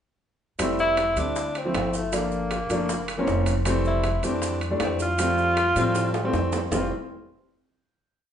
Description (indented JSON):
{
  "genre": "Afro-Cuban jazz",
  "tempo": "157 BPM",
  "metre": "4/4",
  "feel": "straight",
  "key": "F major",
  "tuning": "A4 = 440 Hz",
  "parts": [
    { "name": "warm upright piano", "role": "accompaniment", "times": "0.6-6.9 s", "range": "Fb3 to A4", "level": "-26 LUFS", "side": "left 1 dB", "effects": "none" },
    { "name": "upright bass", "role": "bass", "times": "0.6-6.9 s", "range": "F1 to A2", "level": "-29 LUFS", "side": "equal", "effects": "none" },
    { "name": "bongos", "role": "percussion", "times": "0.6-6.8 s", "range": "none", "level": "-36 LUFS", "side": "left 2 dB", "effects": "none" },
    { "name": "maracas", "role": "percussion", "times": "0.6-6.8 s", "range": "none", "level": "-38 LUFS", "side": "right 5 dB", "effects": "none" },
    { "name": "timbales", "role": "percussion", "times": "0.6-6.8 s", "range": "none", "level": "-33 LUFS", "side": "right 3 dB", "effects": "none" },
    { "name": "mellow tenor saxophone", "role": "melody", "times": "0.8-6.9 s", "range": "A3 to F4", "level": "-26 LUFS", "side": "equal", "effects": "none" }
  ],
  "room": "moderate large studio reverb, RT60 0.9 s",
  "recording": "band playing live in one room, nothing above 10.4 kHz",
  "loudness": "-22 LUFS",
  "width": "side -9 dB against mid",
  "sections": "0.6-6.7 A section; 6.7-8.2 final chord",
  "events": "drum fill 6.0-6.7",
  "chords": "0.6 Fmaj9; 1.4 Dm9; 2.1 Gm7; 2.9 Gb7#11; 3.7 Fmaj9"
}